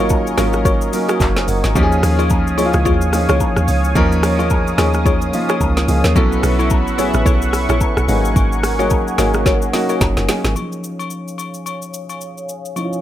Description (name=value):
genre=amapiano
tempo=109 BPM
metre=4/4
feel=swing 58% on 16ths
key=Eb minor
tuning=A4 = 440 Hz
part: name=warm baby grand piano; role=accompaniment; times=0.0-13.0 s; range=F3 to Ab5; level=-19 LUFS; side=equal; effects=low-pass filter
part: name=warm analog pad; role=sustained chords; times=0.0-13.0 s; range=Bb4 to Eb6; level=-24 LUFS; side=equal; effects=chorus, low-pass filter
part: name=mallet-like synth pluck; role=stabs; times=0.0-10.0 s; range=E4 to Db5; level=-23 LUFS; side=left 1 dB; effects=chorus, phaser, slapback echo
part: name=deep log drum bass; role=bass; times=0.0-10.6 s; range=Gb1 to Eb2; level=-19 LUFS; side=equal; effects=none
part: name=afro-pop drum kit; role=drums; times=0.1-13.0 s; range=handclaps, hi-hat, kick drum, rim click, shaker, snare drum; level=-19 LUFS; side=equal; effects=none
part: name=woodblock and agogo bells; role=percussion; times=0.1-12.9 s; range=none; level=-29 LUFS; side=left 6 dB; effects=none
room=little or no reverb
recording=none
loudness=-13 LUFS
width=side -12 dB against mid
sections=0.0-10.6 A section; 10.6-13.0 B section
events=drop 0.0-10.6; drum fill 9.5-10.6; filter sweep 10.6-13.0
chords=0.0 Ab9sus4; 1.8 Eb9sus4; 6.2 B9sus4; 8.1 Ab9sus4; 10.6 Eb9sus4